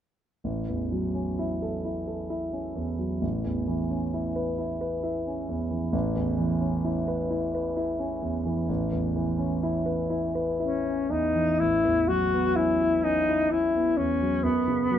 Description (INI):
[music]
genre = classical, impressionist duo for alto saxophone and grand piano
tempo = 58-67 BPM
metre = 3/4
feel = rubato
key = A lydian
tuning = A4 = 440 Hz
[part]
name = warm concert grand piano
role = accompaniment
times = 0.4-15.0 s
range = A1 to B4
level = -27 LUFS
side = right 1 dB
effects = none
[part]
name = warm alto saxophone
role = melody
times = 10.6-15.0 s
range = B3 to F#4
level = -23 LUFS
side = left 2 dB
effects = none
[sound]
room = light reverb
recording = minimal, uncompressed stereo recording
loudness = -24 LUFS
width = side -10 dB against mid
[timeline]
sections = 0.4-11.6 A section; 11.6-15.0 B section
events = none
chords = 0.4 A6; 3.2 Aadd9; 11.6 A69; 14.4 F#5